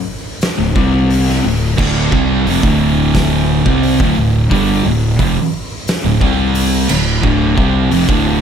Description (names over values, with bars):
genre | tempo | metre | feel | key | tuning
stoner and doom metal | 88 BPM | 4/4 | straight | D minor | A4 = 441 Hz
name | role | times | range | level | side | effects
oversized low-tuned drum kit | drums | 0.4-8.2 s | crash cymbal, hi-hat, kick drum, snare drum | -18 LUFS | equal | none
raw garage guitar | riff | 0.6-8.4 s | D2 to C4 | -18 LUFS | equal | overdrive
thick fuzz guitar | riff | 0.6-8.4 s | D2 to C4 | -18 LUFS | left 9 dB | distortion
fuzz fingered electric bass | bass | 0.6-8.4 s | D1 to C2 | -19 LUFS | right 1 dB | overdrive
thick fuzz guitar | riff | 1.8-8.4 s | D2 to C4 | -16 LUFS | right 8 dB | distortion
room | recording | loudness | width
light reverb | none | -11 LUFS | side -8 dB against mid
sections
0.0-8.4 A section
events
none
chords
0.0 D5; 0.8 C5; 1.4 Dm; 6.2 C5; 6.9 Dm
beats
0.41 1.10 | 1.78 2.46 3.15 3.83 | 4.51 5.19 5.88 6.56 | 7.24 7.92